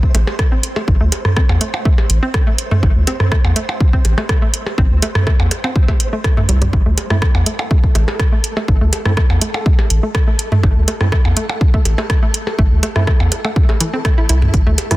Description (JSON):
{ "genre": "minimal techno", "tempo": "123 BPM", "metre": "4/4", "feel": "straight", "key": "A minor", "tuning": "A4 = 440 Hz", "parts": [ { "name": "electronic kick drum", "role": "drums", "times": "0.0-14.6 s", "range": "none", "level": "-14 LUFS", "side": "equal", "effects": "none" }, { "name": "flickering grainy texture", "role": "texture", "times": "0.0-15.0 s", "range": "A4 to C5", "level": "-30 LUFS", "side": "left 1 dB", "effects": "built-in reverb, sidechain pumping" }, { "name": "hollow square pluck", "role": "riff", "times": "0.1-14.9 s", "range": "E3 to E4", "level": "-24 LUFS", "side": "equal", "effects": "chorus, sidechain pumping, dub echo" }, { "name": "saturated sub bass", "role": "bass", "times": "0.1-14.8 s", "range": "A1 to E2", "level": "-15 LUFS", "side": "equal", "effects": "sidechain pumping" }, { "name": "booming analog drum machine", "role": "drums", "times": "0.1-15.0 s", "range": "hi-hat, rim click", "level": "-22 LUFS", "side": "equal", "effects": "overdrive" }, { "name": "electronic percussion blips and toms", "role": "percussion", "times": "0.1-15.0 s", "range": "none", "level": "-19 LUFS", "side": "right 1 dB", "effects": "none" }, { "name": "percussive organ stab", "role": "stabs", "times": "7.1-15.0 s", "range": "A3 to E4", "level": "-29 LUFS", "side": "right 2 dB", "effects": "none" } ], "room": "little or no reverb", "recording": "dense, heavily limited modern master", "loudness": "-12 LUFS", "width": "side -18 dB against mid", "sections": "0.0-15.0 A section", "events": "none", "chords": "0.0 Am" }